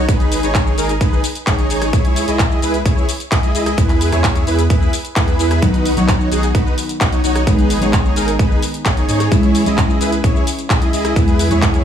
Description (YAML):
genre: EDM, festival progressive house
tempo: 130 BPM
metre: 4/4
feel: straight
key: unclear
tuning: A4 = 440 Hz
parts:
  - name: dense compressed supersaw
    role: riff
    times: 0.0-11.8 s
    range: D#4 to D#5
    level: -19 LUFS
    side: right 1 dB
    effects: cassette tape, sidechain pumping, tape echo
  - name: saturated sub bass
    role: bass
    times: 0.0-11.8 s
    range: G#1 to G#2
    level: -20 LUFS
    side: equal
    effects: sidechain pumping
  - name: big-room dance drum kit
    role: drums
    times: 0.1-11.8 s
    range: handclaps, hi-hat, rim click, shaker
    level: -22 LUFS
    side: left 1 dB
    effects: none
  - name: electronic kick drum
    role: drums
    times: 0.1-11.7 s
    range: none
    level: -15 LUFS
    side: equal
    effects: overdrive
  - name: fingerpicked steel-string acoustic guitar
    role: accompaniment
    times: 5.6-11.8 s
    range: D#3 to E4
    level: -20 LUFS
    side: left 1 dB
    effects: sidechain pumping, tape echo
room: little or no reverb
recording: studio ambience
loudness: -13 LUFS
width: side -9 dB against mid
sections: 0.0-11.8 A section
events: none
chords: 0.1 G#m; 1.9 C#m; 3.8 E; 5.6 B; 7.5 G#m; 9.3 C#m; 11.2 E